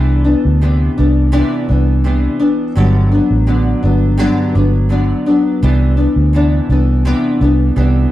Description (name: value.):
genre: indie pop, bedroom pop.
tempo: 84 BPM.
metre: 4/4.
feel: straight.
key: unclear.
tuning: A4 = 442 Hz.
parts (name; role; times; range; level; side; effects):
nylon-string guitar; accompaniment; 0.0-8.1 s; G2 to D4; -14 LUFS; left 1 dB; analog chorus, vibrato effect, plate reverb.
vintage muted fingered electric bass; bass; 0.0-8.1 s; G1 to D2; -12 LUFS; equal; none.
room: light reverb.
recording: dry, gritty hardware recording, transformer saturation.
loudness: -11 LUFS.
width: side -14 dB against mid.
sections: 0.0-8.1 A section.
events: none.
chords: 0.0 Cmaj9; 2.8 Gmaj7; 5.6 Cmaj9.